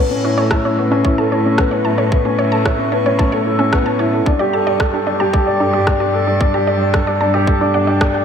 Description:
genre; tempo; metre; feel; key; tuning
piano and strings electronica; 112 BPM; 4/4; straight; unclear; A4 = 440 Hz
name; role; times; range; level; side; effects
rich string quartet; sustained chords; 0.0-8.2 s; G3 to C#6; -32 LUFS; left 1 dB; sidechain pumping
wide unison pluck; arpeggios; 0.0-8.2 s; C#4 to A5; -22 LUFS; right 2 dB; sidechain pumping, analog delay
warm upright piano; riff; 0.0-8.2 s; B3 to G5; -16 LUFS; left 1 dB; lush chorus, low-pass filter, analog delay
rich chamber cello section; bass; 0.0-8.2 s; G2 to A2; -21 LUFS; equal; tube saturation, sidechain pumping
electronic kick drum; drums; 0.5-8.1 s; none; -17 LUFS; equal; overdrive
electronic rim click; drums; 0.5-8.1 s; none; -24 LUFS; equal; none
room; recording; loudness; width
wet lush hall reverb, RT60 1.8 s, small room ambience; dreamy mix soaked in reverb; -13 LUFS; side -7 dB against mid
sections
0.0-8.2 A section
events
fade-in on string quartet 0.0-8.2; filter sweep on upright piano 0.0-8.2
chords
0.0 Aadd9; 4.3 Gsus2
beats
0.51 1.05 1.58 | 2.12 2.65 3.19 3.72 | 4.26 4.80 5.33 5.87 | 6.40 6.94 7.47 8.01

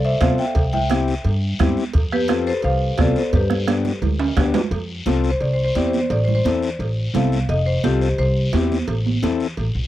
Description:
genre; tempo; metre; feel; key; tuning
latin, cumbia; 173 BPM; 4/4; straight; C major; A4 = 440 Hz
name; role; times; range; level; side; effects
marimba with medium hard mallets; melody; 0.0-8.5 s; G4 to G5; -24 LUFS; left 1 dB; none
upright bass; bass; 0.0-9.9 s; F1 to G2; -21 LUFS; equal; none
overdriven combo organ; accompaniment; 0.2-9.5 s; B3 to A4; -22 LUFS; left 6 dB; none
bombo; percussion; 0.2-4.5 s; none; -20 LUFS; right 1 dB; none
congas; percussion; 0.2-9.8 s; none; -25 LUFS; right 7 dB; none
cowbell and timbales; percussion; 0.2-9.7 s; none; -29 LUFS; right 6 dB; none
guiro; percussion; 0.2-9.9 s; none; -34 LUFS; left 3 dB; none
room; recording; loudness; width
little or no reverb; dry, close 1970s-style studio recording; -17 LUFS; side -14 dB against mid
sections
0.0-4.7 A section; 4.7-9.9 B section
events
drum fill 3.3-4.7; marimba solo 4.7-9.9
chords
0.0 F; 0.6 C; 1.9 F; 3.3 G; 4.7 F; 5.4 C; 6.1 Am; 7.5 F; 8.2 C; 8.9 Am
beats
0.21 | 0.56 0.90 1.25 1.60 | 1.95 2.29 2.64 2.99 | 3.33 3.68 4.03 4.38 | 4.72 5.07 5.42 5.76 | 6.11 6.46 6.80 7.15 | 7.50 7.85 8.19 8.54 | 8.89 9.23 9.58

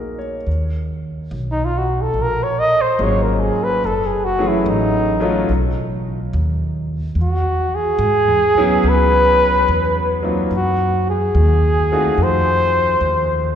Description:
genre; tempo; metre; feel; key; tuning
jazz ballad; 72 BPM; 4/4; swing 68% on 8ths; unclear; A4 = 441 Hz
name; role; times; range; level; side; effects
clear grand piano; accompaniment; 0.0-13.6 s; Fb3 to Db5; -22 LUFS; left 1 dB; none
upright bass; bass; 0.0-13.6 s; Gb1 to G#2; -20 LUFS; equal; none
breathy flugelhorn; melody; 1.5-13.6 s; Eb4 to Eb5; -17 LUFS; equal; none
room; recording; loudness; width
wet church reverb, RT60 3.3 s; recorded in a church or concert hall, nothing above 10.3 kHz; -15 LUFS; side -9 dB against mid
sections
0.5-13.6 A section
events
flugelhorn solo 0.5-13.6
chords
0.5 Ebm11; 3.8 Gbm7; 5.5 B; 7.2 E6; 10.5 Cdim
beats
| 0.46 1.30 2.14 2.98 | 3.81 4.65 5.49 6.32 | 7.16 7.99 8.83 9.66 | 10.50 11.34 12.18 13.02

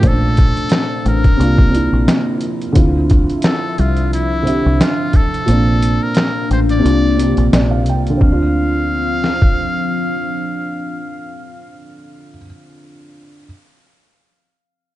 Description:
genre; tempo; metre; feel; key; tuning
lo-fi hip hop; 88 BPM; 4/4; swing 55% on 16ths; D minor; A4 = 439 Hz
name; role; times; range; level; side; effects
trumpet with metal mute; melody; 0.0-11.7 s; E4 to F5; -23 LUFS; left 1 dB; low-pass filter
felt-muted upright piano; accompaniment; 0.0-13.5 s; Bb2 to G5; -19 LUFS; right 2 dB; cassette tape, low-pass filter
deep dark ambient pad; sustained chords; 0.0-11.7 s; C3 to E5; -24 LUFS; left 4 dB; chorus, built-in reverb, low-pass filter
deep dub fingered electric bass; bass; 0.0-12.4 s; A1 to D2; -16 LUFS; equal; none
trip hop sampler-style drum kit; drums; 0.0-9.6 s; finger snaps, hi-hat, kick drum, snare drum; -14 LUFS; equal; none
room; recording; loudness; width
little or no reverb; dark, warm production, nothing above 10.3 kHz; -12 LUFS; side -15 dB against mid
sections
0.0-8.2 A section; 8.2-10.9 B section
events
kick muted 5.5-8.2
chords
0.0 Bbmaj9; 1.4 C9sus4; 2.8 Dm9; 5.5 Bbmaj9; 6.8 C9sus4; 8.2 Dm7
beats
| 0.03 0.71 1.40 2.08 | 2.76 3.44 4.12 4.80 | 5.49 6.17 6.85 7.53 | 8.21 8.90 9.58 10.26

